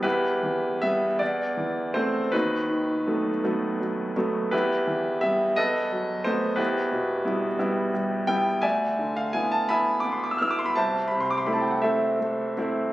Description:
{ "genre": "classical, romantic character piece for solo piano", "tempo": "50-60 BPM (dotted quarters)", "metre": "6/8", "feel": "rubato", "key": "E minor", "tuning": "A4 = 442 Hz", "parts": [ { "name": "bright grand piano", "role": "solo", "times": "0.0-12.9 s", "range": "C2 to F6", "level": "-23 LUFS", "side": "equal", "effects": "none" } ], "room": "moderate recital hall reverb, RT60 1.7 s", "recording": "recorded on a phone in the room, club reverb", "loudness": "-23 LUFS", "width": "side -16 dB against mid", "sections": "0.0-12.9 A section", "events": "none", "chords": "0.0 Em; 1.2 Am/E; 2.3 B7/D#; 4.5 Em; 5.6 B7/E; 6.6 Em; 8.6 E7/D; 10.8 Am/C" }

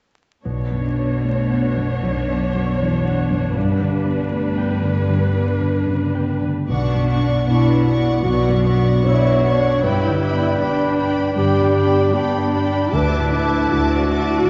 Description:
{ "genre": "cinematic", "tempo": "78 BPM", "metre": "4/4", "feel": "rubato", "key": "B minor", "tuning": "A4 = 437 Hz", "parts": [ { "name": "concert harp", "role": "arpeggios", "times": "0.4-14.5 s", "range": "G2 to G5", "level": "-29 LUFS", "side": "equal", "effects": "none" }, { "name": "dark concert grand piano", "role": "accompaniment", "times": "0.5-14.5 s", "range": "B1 to D5", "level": "-23 LUFS", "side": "equal", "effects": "none" }, { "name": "warm symphonic viola section", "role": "accompaniment", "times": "0.5-14.5 s", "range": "B3 to C#5", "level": "-27 LUFS", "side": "equal", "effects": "none" }, { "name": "clear symphonic cello section", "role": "bass", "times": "0.5-14.5 s", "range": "D2 to B2", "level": "-25 LUFS", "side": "equal", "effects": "none" }, { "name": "warm symphonic violin section", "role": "melody", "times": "6.7-14.5 s", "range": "B5 to D6", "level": "-32 LUFS", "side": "equal", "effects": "none" }, { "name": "warm symphonic violin section", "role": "second line", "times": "6.7-14.5 s", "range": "D5 to A5", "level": "-27 LUFS", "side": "equal", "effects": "none" }, { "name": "warm clarinet", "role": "second line", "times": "7.5-14.5 s", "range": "D4 to C#5", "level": "-24 LUFS", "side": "equal", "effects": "none" } ], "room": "wet scoring stage reverb, RT60 1.5 s", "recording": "heard from further back in the room, vinyl crackle, nothing above 7.9 kHz", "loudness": "-18 LUFS", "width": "mono", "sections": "0.5-6.7 A section; 6.7-14.5 B section", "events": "none", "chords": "0.5 Bmadd9; 3.6 G; 6.7 Bmadd9; 9.8 G; 12.9 Dsus2" }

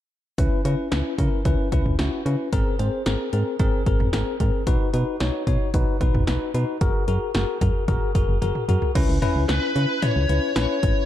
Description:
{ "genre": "synth-pop", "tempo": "112 BPM", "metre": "4/4", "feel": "straight", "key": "C# dorian", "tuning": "A4 = 442 Hz", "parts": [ { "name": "bell-like tine electric piano", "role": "accompaniment", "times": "0.4-11.0 s", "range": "B#3 to C#5", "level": "-26 LUFS", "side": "left 2 dB", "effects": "fast stereo tremolo" }, { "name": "solid FM bass", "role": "bass", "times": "0.4-10.9 s", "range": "F#1 to C#3", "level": "-23 LUFS", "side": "equal", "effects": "none" }, { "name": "punchy analog drum machine", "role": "drums", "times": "0.4-11.0 s", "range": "crash cymbal, hi-hat, kick drum, snare drum, toms", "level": "-23 LUFS", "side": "equal", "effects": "none" }, { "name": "high-gain lead guitar", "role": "melody", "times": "9.5-11.1 s", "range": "B4 to C#5", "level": "-24 LUFS", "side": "left 3 dB", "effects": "distortion, tape echo" } ], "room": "light reverb", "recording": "dark, warm production", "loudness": "-20 LUFS", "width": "side -12 dB against mid", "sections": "0.4-9.0 A section; 9.0-11.1 B section", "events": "drum fill 8.4-9.0", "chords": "0.4 C#m7; 2.5 G#add9; 4.7 B; 6.8 F#add9; 9.0 C#m7" }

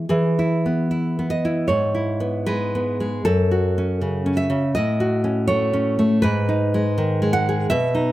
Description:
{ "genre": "romantic piece for solo classical guitar", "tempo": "70-83 BPM", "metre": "2/4", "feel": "rubato", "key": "E major", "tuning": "A4 = 441 Hz", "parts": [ { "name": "nylon-string guitar", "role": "solo", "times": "0.0-8.1 s", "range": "F#2 to F#5", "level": "-18 LUFS", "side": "equal", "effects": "none" } ], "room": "light reverb", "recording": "close, detailed microphones", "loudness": "-18 LUFS", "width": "side -15 dB against mid", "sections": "0.1-8.1 A section", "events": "none", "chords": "0.1 E; 1.7 E/G#; 3.2 F#m; 4.7 F#m/A; 6.2 G#m" }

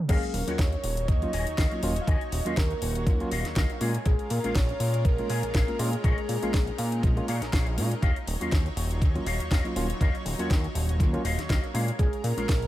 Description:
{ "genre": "nu-disco, nu disco", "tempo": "121 BPM", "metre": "4/4", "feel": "swing 55% on 16ths", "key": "Eb minor", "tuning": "A4 = 442 Hz", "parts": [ { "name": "soft octave-layered synth lead", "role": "melody", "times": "0.1-7.3, 12.0-12.7 s", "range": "Ab4 to F5", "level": "-34 LUFS", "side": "equal", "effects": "chorus, dub echo" }, { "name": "tine electric piano", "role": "accompaniment", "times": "0.1-12.5 s", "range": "Gb3 to F5", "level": "-34 LUFS", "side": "right 1 dB", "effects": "medium tremolo, vintage 12-bit sampler grit, dub echo" }, { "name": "lush unison pad", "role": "sustained chords", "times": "0.1-12.7 s", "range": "Gb3 to Db5", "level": "-39 LUFS", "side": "right 1 dB", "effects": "chorus, sidechain pumping" }, { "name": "electric guitar with an envelope filter", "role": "riff", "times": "0.1-12.7 s", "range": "Gb4 to Ab5", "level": "-37 LUFS", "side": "left 4 dB", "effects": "ensemble chorus, dub echo" }, { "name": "fat analog bass", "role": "bass", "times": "0.1-12.7 s", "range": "Eb1 to Bb2", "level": "-29 LUFS", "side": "equal", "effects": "tube saturation" }, { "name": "electronic kick drum", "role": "drums", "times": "0.1-12.6 s", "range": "none", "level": "-25 LUFS", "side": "equal", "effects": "none" }, { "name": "house drum kit", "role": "drums", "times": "0.1-12.7 s", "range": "crash cymbal, hi-hat, snare drum", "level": "-35 LUFS", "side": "equal", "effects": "overdrive, low-pass filter on toms, low-pass filter on hats, low-pass filter on cymbals, low-pass filter on snare, dub echo" } ], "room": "digital ambience", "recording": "echo-heavy mix", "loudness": "-24 LUFS", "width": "side -14 dB against mid", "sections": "0.1-12.7 A section", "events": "drop 0.1-12.7; clean electric guitar fill 3.1-4.1, 7.0-8.0", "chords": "0.1 Ebm9; 3.8 Bbm7; 8.0 Ebm9; 11.7 Bbm7" }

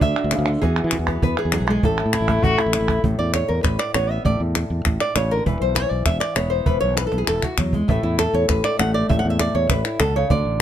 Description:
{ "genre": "flamenco", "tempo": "198 BPM", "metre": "4/4", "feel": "straight", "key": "A major", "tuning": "A4 = 441 Hz", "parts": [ { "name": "flamenco guitar", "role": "melody", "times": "0.0-10.6 s", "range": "A2 to F#5", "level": "-21 LUFS", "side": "equal", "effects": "none" }, { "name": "sustaining fretless electric bass", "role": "bass", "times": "0.0-10.6 s", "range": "E1 to E3", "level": "-23 LUFS", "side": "equal", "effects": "none" }, { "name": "cajon", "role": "percussion", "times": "0.0-10.5 s", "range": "none", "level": "-23 LUFS", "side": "right 2 dB", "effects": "none" }, { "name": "palmas hand claps", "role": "percussion", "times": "0.2-10.2 s", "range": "none", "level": "-24 LUFS", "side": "left 3 dB", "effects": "none" }, { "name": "mellow soprano saxophone", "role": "second line", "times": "2.1-3.0 s", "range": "E4 to F#4", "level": "-23 LUFS", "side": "left 1 dB", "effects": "none" } ], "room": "little or no reverb", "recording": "close, detailed microphones", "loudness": "-18 LUFS", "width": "side -10 dB against mid", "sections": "0.0-3.0 A section; 3.0-10.6 B section", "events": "drum fill 2.6-3.0, 7.1-7.9; nylon-string guitar solo 3.0-10.6", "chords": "0.0 Dadd9; 0.6 Eadd9; 1.8 A5; 5.5 E5; 7.9 Asus2" }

